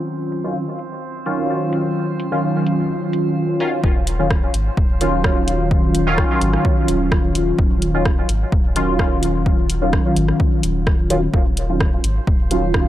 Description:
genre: dub techno.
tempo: 128 BPM.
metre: 4/4.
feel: straight.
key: Eb dorian.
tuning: A4 = 440 Hz.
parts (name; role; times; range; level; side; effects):
resonant sweep polysynth; stabs; 0.0-12.9 s; Eb3 to F4; -19 LUFS; equal; chorus, phaser, sidechain pumping, dub echo.
drifting glass-harmonics texture; texture; 0.0-12.9 s; Gb3 to C5; -36 LUFS; right 4 dB; chorus, built-in reverb, sidechain pumping.
deep house drum kit; drums; 0.3-12.8 s; hi-hat, rim click; -25 LUFS; equal; overdrive, low-pass filter on hats, low-pass filter on snare.
soft dub sub bass; bass; 3.8-12.9 s; Eb1 to Ab1; -22 LUFS; equal; tube saturation, sidechain pumping.
electronic kick drum; drums; 3.8-12.8 s; none; -18 LUFS; equal; overdrive.
room: little or no reverb.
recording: dry, gritty hardware recording, transformer saturation, low-pass filter.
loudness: -16 LUFS.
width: side -13 dB against mid.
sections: 0.0-3.8 A section; 3.8-12.9 B section.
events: filter sweep on analog polysynth 0.0-3.8, 3.8-12.9; filter sweep 0.0-3.8.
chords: 0.0 Ebm9.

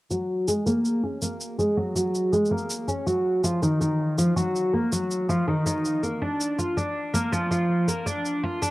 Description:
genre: folktronica.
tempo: 81 BPM.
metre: 4/4.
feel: straight.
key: F# major.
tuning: A4 = 440 Hz.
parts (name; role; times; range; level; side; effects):
picked twelve-string acoustic guitar; arpeggios; 0.1-8.7 s; D#3 to E#4; -23 LUFS; equal; low-pass filter, cassette tape, analog delay.
cabasa; drums; 0.1-8.7 s; none; -33 LUFS; right 1 dB; none.
room: light reverb, small room ambience.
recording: home recording on cassette.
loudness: -22 LUFS.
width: side -18 dB against mid.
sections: 0.1-8.7 A section.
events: filter sweep on twelve-string acoustic guitar 0.1-8.7.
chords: none.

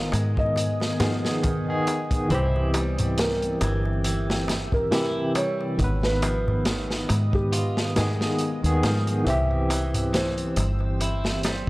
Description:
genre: trip hop.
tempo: 69 BPM.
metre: 4/4.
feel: swing 55% on 16ths.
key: unclear.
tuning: A4 = 440 Hz.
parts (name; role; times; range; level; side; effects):
barky tine electric piano; accompaniment; 0.0-11.7 s; C3 to Cb5; -28 LUFS; equal; tremolo.
deep dark ambient pad; sustained chords; 0.0-11.7 s; Cb4 to E6; -36 LUFS; left 1 dB; chorus, built-in reverb.
clean electric guitar; arpeggios; 0.0-11.7 s; Eb3 to F4; -34 LUFS; equal; tape echo.
deep dub fingered electric bass; bass; 0.0-11.7 s; G1 to Ab2; -26 LUFS; equal; tube saturation.
crunchy breakbeat drum kit; drums; 0.1-11.7 s; hi-hat, kick drum, snare drum; -28 LUFS; equal; none.
darbuka; percussion; 0.1-11.7 s; none; -31 LUFS; equal; none.
felt-muted upright piano; melody; 0.4-10.7 s; G4 to E5; -30 LUFS; equal; tape echo.
room: studio reverb.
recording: dry, gritty hardware recording, vinyl crackle.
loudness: -22 LUFS.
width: side -20 dB against mid.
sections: 0.0-11.7 A section.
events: none.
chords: 0.0 Abm; 2.3 C; 5.8 Abm; 9.3 C.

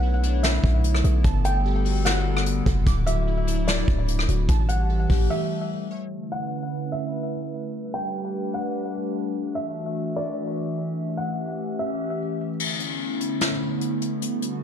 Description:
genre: hip hop, atmospheric cloud-rap.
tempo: 148 BPM.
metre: 4/4.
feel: half-time.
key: B minor.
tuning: A4 = 435 Hz.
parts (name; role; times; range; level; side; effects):
felt-muted upright piano; melody; 0.0-12.2 s; D5 to G5; -32 LUFS; equal; ping-pong delay.
hollow soft pad; sustained chords; 0.0-14.6 s; D3 to E5; -28 LUFS; left 1 dB; chorus, sidechain pumping.
glassy digital keys; arpeggios; 0.0-6.1 s; A3 to D6; -34 LUFS; left 3 dB; chorus, ping-pong delay.
warm 808-style bass; bass; 0.0-5.3 s; D1 to B1; -22 LUFS; equal; none.
soft brush drum kit; drums; 0.2-5.2, 12.6-14.5 s; crash cymbal, hi-hat, kick drum, rim click, snare drum; -25 LUFS; equal; none.
room: light reverb, small room ambience.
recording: low-pass filter.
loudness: -22 LUFS.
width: side -9 dB against mid.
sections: 0.0-6.1 A section; 6.1-12.6 B section; 12.6-14.6 C section.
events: break 5.3-6.1; filter sweep 6.1-12.6; kick muted 12.6-14.6.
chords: 0.0 Bm11; 1.2 Gmaj9; 2.9 Dadd9; 4.5 A7; 6.1 Bm11; 7.7 Gmaj9; 9.4 Dadd9; 11.0 A7; 12.6 Bm11.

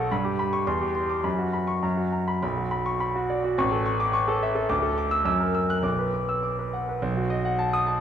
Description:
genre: classical, virtuoso piano study.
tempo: 104 BPM.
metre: 2/4.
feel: uneven beats, rubato.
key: B minor.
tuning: A4 = 435 Hz.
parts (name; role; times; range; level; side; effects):
clear concert grand piano; solo; 0.0-8.0 s; A1 to F#6; -23 LUFS; equal; none.
room: wet recital hall reverb, RT60 1.4 s.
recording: recorded in a church or concert hall.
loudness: -23 LUFS.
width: side -9 dB against mid.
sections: 0.0-7.0 A section.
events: none.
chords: 0.1 G; 0.7 C/E; 1.2 F#sus4; 1.8 F#; 2.4 Bm; 3.6 A; 4.7 D5; 5.3 F#7; 5.8 Bm; 7.0 B7.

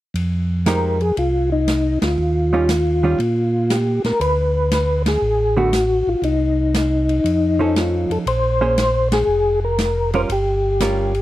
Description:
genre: soul jazz organ trio.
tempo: 118 BPM.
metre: 4/4.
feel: swing 68% on 8ths.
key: unclear.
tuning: A4 = 441 Hz.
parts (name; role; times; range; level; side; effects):
mellow tonewheel organ; bass; 0.1-11.2 s; F1 to Bb2; -20 LUFS; equal; slow rotary speaker.
swinging big-band drum kit; drums; 0.2-11.2 s; hi-hat, ride cymbal, snare drum; -27 LUFS; equal; none.
percussive tonewheel organ; melody; 0.7-11.2 s; Eb4 to C5; -18 LUFS; left 1 dB; slow rotary speaker, chorus vibrato, slapback echo.
hollow-body jazz guitar; accompaniment; 0.7-11.1 s; D3 to C5; -21 LUFS; right 4 dB; none.
room: little or no reverb.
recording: dry, close 1970s-style studio recording.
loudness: -16 LUFS.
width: side -15 dB against mid.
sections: 0.2-11.2 A section.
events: band accent 1.9, 5.0, 9.0.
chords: 0.2 Fm9; 2.2 Eb9; 4.2 D6; 6.2 Cm; 7.3 Faug7; 8.3 Bbm9; 10.3 Gm7b5.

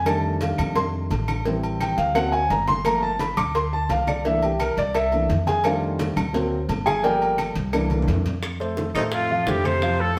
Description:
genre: Afro-Cuban jazz.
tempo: 172 BPM.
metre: 4/4.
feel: straight.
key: unclear.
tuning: A4 = 441 Hz.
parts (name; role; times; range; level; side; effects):
warm concert grand piano; accompaniment; 0.0-10.1 s; Eb3 to D6; -25 LUFS; equal; none.
upright bass; bass; 0.0-10.2 s; G1 to A2; -29 LUFS; equal; none.
agogo bells and timbales; percussion; 0.1-9.8 s; none; -35 LUFS; equal; none.
claves; percussion; 0.1-9.8 s; none; -40 LUFS; equal; none.
congas; percussion; 0.1-10.2 s; none; -34 LUFS; equal; none.
cowbell and bongos; percussion; 0.1-10.2 s; none; -33 LUFS; equal; none.
mellow trumpet; melody; 8.9-10.2 s; Eb4 to C5; -26 LUFS; equal; none.
warm baritone saxophone; second line; 9.0-10.2 s; Eb2 to C3; -33 LUFS; equal; none.
room: wet stone room reverb, RT60 1.1 s.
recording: band playing live in one room.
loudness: -23 LUFS.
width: mono.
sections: 0.0-8.4 A section; 8.4-10.2 B section.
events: grand piano solo 0.0-8.4; drum fill 7.9-8.4.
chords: 0.1 F13; 1.5 Am7; 2.2 Daug7; 2.9 Gm7; 4.3 C13; 5.6 F13; 6.3 Daug7; 7.0 Gm7; 7.7 C13; 8.4 F.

